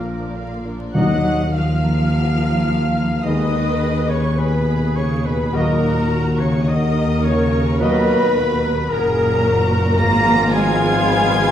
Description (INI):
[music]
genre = classical, slow romantic movement for symphony orchestra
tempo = 46-56 BPM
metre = 4/4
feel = rubato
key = Eb minor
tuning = A4 = 438 Hz
[part]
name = rich studio violin section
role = melody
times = 0.0-11.5 s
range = Bb5 to Bb6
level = -28 LUFS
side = left 2 dB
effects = none
[part]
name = bright studio violin section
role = second line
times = 0.0-11.5 s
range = Bb4 to Bb5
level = -30 LUFS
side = left 3 dB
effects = none
[part]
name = clear clarinet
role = second line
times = 0.0-11.5 s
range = F4 to Bb5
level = -28 LUFS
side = left 2 dB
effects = none
[part]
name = clear oboe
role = second line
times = 0.0-11.5 s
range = Bb4 to Bb5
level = -28 LUFS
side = equal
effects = none
[part]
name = mellow hollow large flute ensemble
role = second line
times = 0.0-11.5 s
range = Bb4 to F6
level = -26 LUFS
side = equal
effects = none
[part]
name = rich studio viola section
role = accompaniment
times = 0.0-11.5 s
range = D3 to Cb5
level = -27 LUFS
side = right 1 dB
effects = none
[part]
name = warm bassoon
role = accompaniment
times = 0.0-0.6 s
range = Bb3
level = -37 LUFS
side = right 4 dB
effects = none
[part]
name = clear French horn section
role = sustained chords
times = 0.0-11.5 s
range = Bb3 to Ab4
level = -27 LUFS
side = left 2 dB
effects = none
[part]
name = concert harp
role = arpeggios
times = 0.0-11.5 s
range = Ab2 to Cb6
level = -24 LUFS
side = left 4 dB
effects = none
[part]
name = clear studio cello section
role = bass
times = 0.0-11.5 s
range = Bb2 to Bb3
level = -24 LUFS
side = right 1 dB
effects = none
[part]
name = rich studio double bass section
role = bass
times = 0.0-11.5 s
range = Gb1 to Eb2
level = -24 LUFS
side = right 1 dB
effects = none
[part]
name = warm trombone section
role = sustained chords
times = 0.9-11.5 s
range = Ab2 to Ab3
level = -27 LUFS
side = right 2 dB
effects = none
[part]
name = clear trumpet section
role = stabs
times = 0.9-11.5 s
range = Eb5 to F5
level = -26 LUFS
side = left 2 dB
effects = none
[part]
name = warm tuba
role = bass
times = 0.9-11.5 s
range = Gb1 to Eb2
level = -23 LUFS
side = right 1 dB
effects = none
[part]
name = timpani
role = percussion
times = 0.9-2.6 s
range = Eb3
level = -24 LUFS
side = equal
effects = none
[sound]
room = wet recital hall reverb, RT60 1.3 s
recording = heard from further back in the room, vinyl crackle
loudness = -15 LUFS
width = side -10 dB against mid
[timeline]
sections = 0.9-11.5 A section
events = none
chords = 0.0 Bb; 0.9 Ebm; 3.2 Abm/Eb; 5.5 Ebm; 10.0 Fdim/Ab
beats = | 0.95 2.11 3.24 4.38 | 5.54 6.67 7.80 8.90 | 9.97 11.06